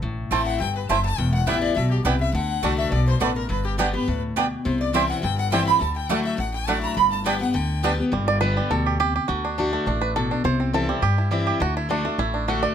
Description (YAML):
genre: bluegrass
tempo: 207 BPM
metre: 4/4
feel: straight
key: G major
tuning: A4 = 445 Hz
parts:
  - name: picked steel-string acoustic guitar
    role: accompaniment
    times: 0.0-12.7 s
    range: E2 to G4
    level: -26 LUFS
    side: left 3 dB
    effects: none
  - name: upright bass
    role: bass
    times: 0.0-12.6 s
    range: E1 to G2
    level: -25 LUFS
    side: equal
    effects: none
  - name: bluegrass banjo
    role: melody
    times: 0.3-12.7 s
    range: G3 to D5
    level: -25 LUFS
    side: right 3 dB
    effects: none
  - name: lap resonator guitar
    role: melody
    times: 0.3-8.0 s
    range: F#4 to B5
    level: -27 LUFS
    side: right 3 dB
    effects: none
  - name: clear fiddle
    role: second line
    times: 0.3-8.0 s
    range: F#4 to B5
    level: -31 LUFS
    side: left 9 dB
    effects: none
  - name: mandolin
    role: stabs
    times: 0.3-7.9 s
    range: A3 to A5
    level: -26 LUFS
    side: right 7 dB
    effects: none
room: light reverb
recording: close, detailed microphones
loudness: -20 LUFS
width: side -9 dB against mid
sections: 0.0-8.1 A section; 8.1-12.7 B section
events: five-string banjo solo 8.1-12.7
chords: 0.0 Am; 1.2 Em; 2.3 D; 3.5 G; 4.7 C; 5.8 Dadd9; 7.0 G; 9.3 D; 10.4 C; 11.6 D